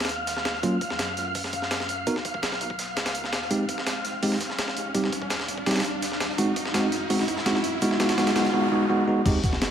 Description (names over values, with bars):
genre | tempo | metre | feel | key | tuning
drum and bass, jungle | 167 BPM | 4/4 | straight | unclear | A4 = 440 Hz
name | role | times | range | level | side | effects
soft dub sub bass | bass | 0.0-9.7 s | F1 to Gb2 | -42 LUFS | equal | high-pass filter
breakbeat sampler-style drum kit | drums | 0.0-9.7 s | crash cymbal, hi-hat, kick drum, snare drum | -28 LUFS | equal | high-pass filter on kick, studio reverb, high-pass filter on hats, high-pass filter on snare, high-pass filter on cymbals
riser, noise sweep and sub drop | sound effects | 0.4-9.7 s | none | -33 LUFS | right 1 dB | none
wind-like tuned noise texture | texture | 0.0-8.5 s | F5 to F6 | -33 LUFS | equal | built-in reverb
crunchy breakbeat drum kit | drums | 0.1-8.5 s | hi-hat, shaker, snare drum | -42 LUFS | equal | none
bell-like tine electric piano | stabs | 0.6-9.4 s | Gb3 to Bb4 | -25 LUFS | right 1 dB | medium stereo tremolo, low-pass filter, dub echo
room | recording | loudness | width
wet echo chamber reverb, RT60 1.6 s | vinyl crackle | -23 LUFS | side -9 dB against mid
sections
0.0-9.3 A section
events
build-up 0.0-9.3; riser 0.4-8.5; noise sweep 7.8-9.3; impact 9.3-9.7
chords
0.0 N.C.; 2.1 Abm (rootless); 3.5 Fm7; 4.9 Cm; 6.4 Ebm; 7.8 Abm7